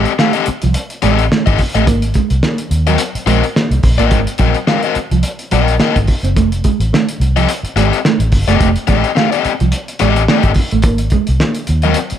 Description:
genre	funk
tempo	107 BPM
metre	4/4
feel	swing 56% on 16ths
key	F mixolydian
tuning	A4 = 439 Hz
part	overdriven electric guitar	accompaniment	0.0-12.0 s	C4 to F5	-16 LUFS	left 9 dB	none
part	mellow electric guitar	riff	0.0-11.9 s	F3 to C4	-19 LUFS	right 7 dB	none
part	vintage muted fingered electric bass	bass	0.0-12.2 s	F1 to Eb2	-15 LUFS	equal	none
part	cloth-damped thuddy drum kit	drums	0.1-12.2 s	hi-hat, kick drum, snare drum	-17 LUFS	equal	none
room	light reverb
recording	none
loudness	-11 LUFS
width	side -10 dB against mid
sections	0.0-12.2 A section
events	none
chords	0.0 F9; 1.9 Ab9; 6.4 F9; 10.8 Ab9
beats	0.19 0.75 1.31 | 1.87 2.43 3.00 3.56 | 4.12 4.68 5.24 5.80 | 6.36 6.92 7.49 8.05 | 8.61 9.17 9.73 10.29 | 10.85 11.41 11.97

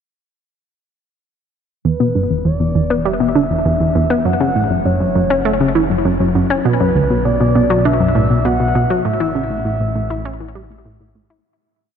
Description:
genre	ambient, sequencer-driven space music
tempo	100 BPM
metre	4/4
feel	straight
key	unclear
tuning	A4 = 435 Hz
part	mellow horn-like synth lead	melody	1.9-10.8 s	B4 to F#5	-21 LUFS	equal	chorus, ping-pong delay
part	analog pluck	riff	1.9-11.4 s	D2 to E4	-15 LUFS	equal	chorus, ping-pong delay
part	fat analog bass	bass	1.9-11.4 s	E1 to B1	-24 LUFS	equal	none
room	wet huge ambient reverb, RT60 7.8 s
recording	dark, warm production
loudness	-13 LUFS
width	side -7 dB against mid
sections	1.9-11.5 A section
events	fade-in on analog synth bass 1.9-11.5; fade-out 8.3-11.5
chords	1.9 Em; 4.3 F#m; 6.7 Bm; 9.1 A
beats	| 1.85 2.45 3.05 3.65 | 4.25 4.85 5.45 6.05 | 6.65 7.25 7.85 8.45 | 9.05 9.65 10.25 10.85

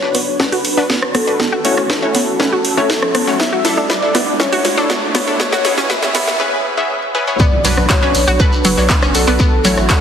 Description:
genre	progressive house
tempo	120 BPM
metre	4/4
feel	straight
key	B dorian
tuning	A4 = 440 Hz
part	warm velvety synth lead	melody	0.0-10.0 s	A4 to E5	-20 LUFS	equal	chorus, tape echo
part	evolving wavetable pad	sustained chords	0.0-10.0 s	A3 to F#4	-25 LUFS	right 2 dB	chorus, built-in reverb, sidechain pumping
part	wide unison pluck	stabs	0.0-10.0 s	A3 to E5	-19 LUFS	left 2 dB	sidechain pumping, tape echo
part	round analog bass	bass	0.0-9.9 s	F#1 to E2	-23 LUFS	equal	sidechain pumping, high-pass filter
part	dusty soul sampler-style drum kit	drums	0.0-10.0 s	hi-hat, snare drum	-27 LUFS	left 1 dB	none
part	riser and impact	sound effects	0.6-9.4 s	none	-28 LUFS	right 1 dB	none
part	analog pluck	arpeggios	0.1-10.0 s	F#3 to B4	-20 LUFS	equal	chorus, sidechain pumping, tape echo
part	house drum kit	drums	0.1-10.0 s	handclaps, hi-hat, rim click, snare drum, toms	-19 LUFS	right 1 dB	overdrive, high-pass filter on snare, high-pass filter on hats, high-pass filter on toms, high-pass filter on room
part	electronic kick drum	drums	0.4-10.0 s	none	-16 LUFS	equal	overdrive, high-pass filter on kick, high-pass filter on room
part	shekere	percussion	7.4-10.0 s	none	-23 LUFS	left 2 dB	none
room	moderate lush hall reverb, RT60 2.1 s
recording	heavily compressed radio sound, multiband compression, high-pass filter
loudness	-12 LUFS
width	side -8 dB against mid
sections	0.0-7.4 A section; 7.4-10.0 B section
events	build-up 0.0-7.4; drum fill 0.0-6.4, 7.0-7.4; filter sweep on synth arpeggio sound 0.0-7.4; filter sweep on ambient pad 0.0-7.4; riser 0.6-6.4; break 6.4-7.4; drop 7.4-10.0; impact 7.4-9.4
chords	0.0 Bm; 1.4 A6; 3.4 Dsus2; 5.4 C#m7; 7.4 Bm; 9.4 A6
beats	0.40 0.90 | 1.40 1.90 2.40 2.90 | 3.40 3.90 4.40 4.90 | 5.40 5.90 6.40 6.90 | 7.40 7.90 8.40 8.90 | 9.40 9.90

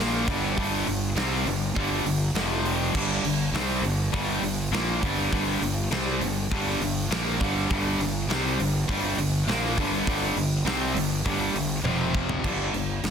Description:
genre	hard rock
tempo	101 BPM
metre	4/4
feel	straight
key	unclear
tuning	A4 = 438 Hz
part	crunchy overdriven guitar	riff	0.0-13.1 s	F2 to C4	-31 LUFS	right 11 dB	none
part	high-gain distorted guitar	riff	0.0-12.4 s	F2 to C4	-31 LUFS	right 1 dB	distortion
part	overdriven electric guitar	riff	0.0-13.1 s	F2 to C4	-29 LUFS	left 9 dB	none
part	fuzz fingered electric bass	bass	0.0-13.1 s	F1 to C2	-30 LUFS	equal	overdrive
part	big rock drum kit	drums	0.3-13.1 s	crash cymbal, hi-hat, kick drum, snare drum, toms	-29 LUFS	right 1 dB	soft clipping on kick
room	little or no reverb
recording	dense, heavily limited modern master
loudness	-23 LUFS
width	side -7 dB against mid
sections	0.0-12.4 A section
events	drum fill 11.9-12.4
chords	0.0 G5; 2.4 F5; 2.9 G5; 11.9 F5; 12.4 G5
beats	| 0.56 1.16 1.75 2.35 | 2.94 3.54 4.14 4.73 | 5.33 5.92 6.51 7.11 | 7.70 8.30 8.89 9.48 | 10.08 10.67 11.26 11.86 | 12.45 13.04

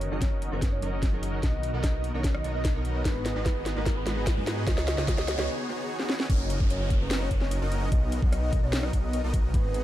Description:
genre	future bass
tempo	148 BPM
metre	4/4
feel	half-time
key	unclear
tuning	A4 = 440 Hz
part	warm velvety synth lead	melody	0.0-9.8 s	A#4 to D#5	-36 LUFS	right 1 dB	chorus, tremolo, sidechain pumping, tape echo
part	shimmering ambient pad	sustained chords	0.0-5.5 s	D#3 to A#4	-44 LUFS	equal	none
part	supersaw chords	riff	0.0-9.8 s	B3 to D#5	-35 LUFS	equal	sidechain pumping, low-pass filter
part	wide detuned saw bass	bass	0.0-9.8 s	F#1 to G#2	-30 LUFS	equal	chorus, sidechain pumping
part	trap drum kit	drums	0.0-9.8 s	crash cymbal, hi-hat, rim click, snare drum	-32 LUFS	equal	none
part	riser, swell and downlifter	sound effects	0.0-9.5 s	none	-43 LUFS	equal	none
part	glassy digital keys	accompaniment	0.1-5.5 s	B2 to F#5	-38 LUFS	right 3 dB	chorus, sidechain pumping, digital delay
part	electronic kick drum	drums	0.2-9.6 s	none	-26 LUFS	equal	none
room	light reverb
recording	dark, warm production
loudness	-25 LUFS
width	side -13 dB against mid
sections	0.0-6.3 A section; 6.3-9.8 B section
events	build-up 0.0-6.3; drum fill 0.0-5.5, 6.0-6.3; riser 0.0-5.5; break 5.5-6.3; swell 5.5-6.3; drop 6.3-9.8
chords	0.0 F#6; 1.4 Bmaj7; 3.1 G#m7; 4.7 C#9sus4; 6.3 F#6; 7.9 Bmaj7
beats	0.22 0.62 1.03 | 1.43 1.84 2.24 2.65 | 3.05 3.46 3.86 4.27 | 4.67 5.08 5.49 5.89 | 6.30 6.70 7.11 7.51 | 7.92 8.32 8.73 9.13 | 9.54

